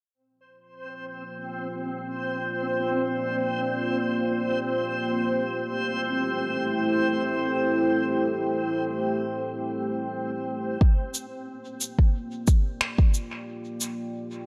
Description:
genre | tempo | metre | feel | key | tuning
ambient dub | free time | none | none | G dorian | A4 = 440 Hz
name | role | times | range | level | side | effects
deep dark ambient pad | sustained chords | 1.3-14.5 s | A3 to G5 | -31 LUFS | equal | chorus, built-in reverb
backwards swelling texture | texture | 0.8-10.8 s | C4 to C5 | -31 LUFS | equal | built-in reverb
electronic kick drum | drums | 10.8-13.1 s | none | -21 LUFS | equal | none
electronic cabasa and finger snaps | drums | 11.1-13.9 s | none | -31 LUFS | equal | dub echo
room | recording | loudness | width
moderate echo chamber reverb, RT60 2.1 s | echo-heavy mix | -26 LUFS | mono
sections
0.1-10.8 A section; 10.8-14.5 B section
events
none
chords
0.1 Gm7; 5.5 Am7; 10.8 Gm7

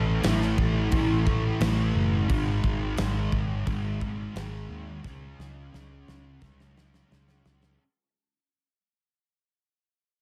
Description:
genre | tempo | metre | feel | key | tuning
rock, shoegaze and dream pop | 87 BPM | 4/4 | straight | unclear | A4 = 440 Hz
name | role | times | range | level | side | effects
thick fuzz guitar | riff | 0.0-7.8 s | G#2 to C#4 | -31 LUFS | equal | distortion, analog chorus
vintage muted fingered electric bass | bass | 0.0-7.8 s | F#1 to D#2 | -31 LUFS | equal | none
gated 80s drum kit | drums | 0.2-7.8 s | crash cymbal, kick drum, snare drum | -33 LUFS | equal | none
room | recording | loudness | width
light reverb, small room ambience | none | -26 LUFS | mono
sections
0.0-7.8 A section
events
fade-out 0.0-7.8; drum fill 5.0-7.8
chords
0.0 A5; 2.3 G#5; 5.0 C#5

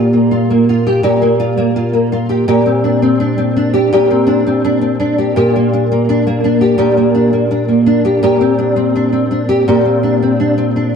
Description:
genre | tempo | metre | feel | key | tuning
indie pop | 83 BPM | 4/4 | straight | Bb major | A4 = 440 Hz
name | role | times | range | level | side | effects
nylon-string guitar | solo | 0.0-11.0 s | Bb2 to G4 | -11 LUFS | equal | ensemble chorus, vibrato effect, slapback echo
room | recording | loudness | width
light reverb | none | -11 LUFS | side -6 dB against mid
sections
0.0-11.0 A section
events
none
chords
0.0 Gm7/Bb; 2.5 Bb69; 5.4 Gm/Bb; 8.2 Bb69

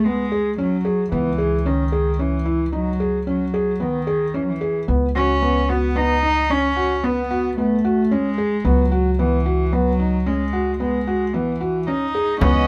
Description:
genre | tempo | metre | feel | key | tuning
contemporary instrumental, chamber music in an uneven meter | 112 BPM | 7/4 | straight | unclear | A4 = 440 Hz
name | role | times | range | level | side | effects
warm cello | melody | 0.0-12.7 s | D#3 to D#4 | -24 LUFS | equal | none
upright bass | bass | 0.0-12.7 s | C#2 | -26 LUFS | equal | none
felt-muted upright piano | arpeggios | 0.1-12.6 s | B3 to G#4 | -24 LUFS | equal | none
warm studio string section | sustained chords | 12.4-12.7 s | E3 to D#5 | -27 LUFS | equal | none
frame drum | percussion | 12.4-12.7 s | none | -25 LUFS | equal | none
room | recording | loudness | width
light reverb | close, detailed microphones | -20 LUFS | mono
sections
0.0-12.7 A section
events
none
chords
0.0 C#madd9; 4.9 Bsus2/C#

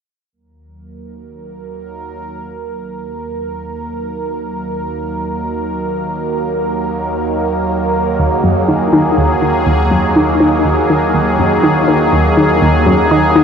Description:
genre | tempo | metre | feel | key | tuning
ambient, sequencer-driven space music | 122 BPM | 4/4 | straight | Eb minor | A4 = 440 Hz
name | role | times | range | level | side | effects
sweeping resonant pad | sustained chords | 0.3-13.4 s | Eb2 to Bb4 | -15 LUFS | right 1 dB | chorus
analog pluck | riff | 8.2-13.4 s | Eb2 to Eb3 | -13 LUFS | left 1 dB | chorus, ping-pong delay
room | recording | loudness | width
wet echo chamber reverb, RT60 2.9 s | echo-heavy mix, cassette tape | -12 LUFS | side -7 dB against mid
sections
0.3-13.4 A section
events
fade-in on analog synth pad 0.3-13.4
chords
0.3 Ebm

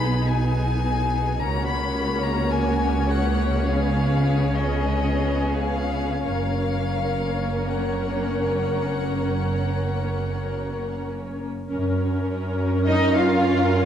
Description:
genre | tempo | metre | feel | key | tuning
classical, slow romantic movement for string orchestra | 41-55 BPM | 4/4 | rubato | F# major | A4 = 443 Hz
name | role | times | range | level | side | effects
rich chamber violin section | melody | 0.0-13.9 s | C#5 to B5 | -31 LUFS | left 8 dB | none
rich symphonic violin section | second line | 0.0-13.9 s | F#4 to E#5 | -29 LUFS | left 2 dB | none
rich symphonic viola section | accompaniment | 0.0-13.9 s | A#3 to A#4 | -26 LUFS | equal | none
clear symphonic double bass section | bass | 0.0-13.9 s | F#1 to F#2 | -26 LUFS | right 2 dB | none
rich symphonic cello section | bass | 0.0-13.9 s | F#2 to E#4 | -28 LUFS | right 2 dB | none
room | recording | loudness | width
wet concert hall reverb, RT60 1.9 s | dark, warm production | -21 LUFS | side -9 dB against mid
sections
0.0-11.7 A section; 11.7-13.9 A section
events
none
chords
0.0 G#m/B; 1.4 F#/C#; 3.7 C#5; 6.3 F#

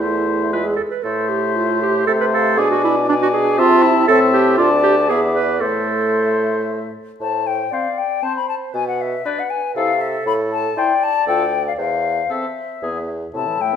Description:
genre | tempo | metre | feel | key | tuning
quick classical-period movement for wind quintet | 117 BPM | 3/4 | straight | A minor | A4 = 440 Hz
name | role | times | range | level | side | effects
silver concert flute | melody | 0.0-13.8 s | D5 to B5 | -22 LUFS | left 8 dB | none
warm oboe | second line | 0.0-13.8 s | E4 to E5 | -23 LUFS | left 4 dB | none
clear French horn | accompaniment | 0.0-13.8 s | C3 to F4 | -23 LUFS | left 2 dB | none
warm clarinet | accompaniment | 0.0-13.1 s | D4 to D5 | -20 LUFS | right 5 dB | none
warm bassoon | bass | 0.0-13.8 s | D2 to C3 | -23 LUFS | right 1 dB | none
room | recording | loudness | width
wet recital hall reverb, RT60 1.4 s | none | -15 LUFS | side -8 dB against mid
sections
0.0-7.2 A section; 7.2-13.8 A section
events
none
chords
0.0 Am/E; 0.5 E; 1.1 Am; 2.6 G#dim/B; 3.6 Am/C; 4.1 Am; 4.6 Dm; 5.1 E7; 5.6 Am; 8.7 Bm6; 9.8 Am/C; 10.3 A5; 11.3 Dm; 11.8 Am/E (rootless); 12.8 E

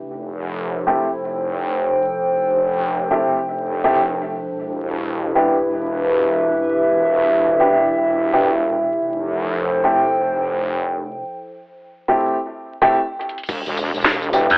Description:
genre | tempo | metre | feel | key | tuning
glitch hop | 107 BPM | 4/4 | swing 62% on 16ths | unclear | A4 = 441 Hz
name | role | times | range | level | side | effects
warbly tape-like pad | sustained chords | 0.0-14.6 s | E3 to A4 | -29 LUFS | equal | chorus, built-in reverb, sidechain pumping, cassette tape
wobble bass | bass | 0.0-14.5 s | E1 to F1 | -26 LUFS | equal | chorus, tube saturation
warbly tape-like pad | texture | 0.0-11.2 s | F3 to G5 | -19 LUFS | equal | chorus, built-in reverb, sidechain pumping, cassette tape
dark grand piano | stabs | 0.9-14.5 s | A3 to G4 | -18 LUFS | equal | sidechain pumping, low-pass filter, cassette tape, analog delay
drum and bass drum kit | drums | 13.2-14.6 s | crash cymbal, hi-hat, snare drum, tambourine | -21 LUFS | equal | overdrive, low-pass filter on cymbals, cassette tape, low-pass filter on hats, low-pass filter on perc, low-pass filter on snare, low-pass filter on room
electronic kick drum | drums | 13.5-14.6 s | none | -29 LUFS | equal | overdrive, cassette tape
gritty slap bass | bass | 14.5-14.6 s | E2 | -12 LUFS | equal | overdrive
room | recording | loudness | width
moderate spring reverb, RT60 2.2 s | home recording on cassette, vinyl crackle, telephone sound | -17 LUFS | side -26 dB against mid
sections
0.0-13.5 A section; 13.5-14.6 B section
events
filter sweep on grand piano 0.0-13.5; drum fill 13.2; drop 13.5-14.6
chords
0.0 Fmaj7; 4.5 Em7; 9.0 Fmaj7; 13.5 Em7

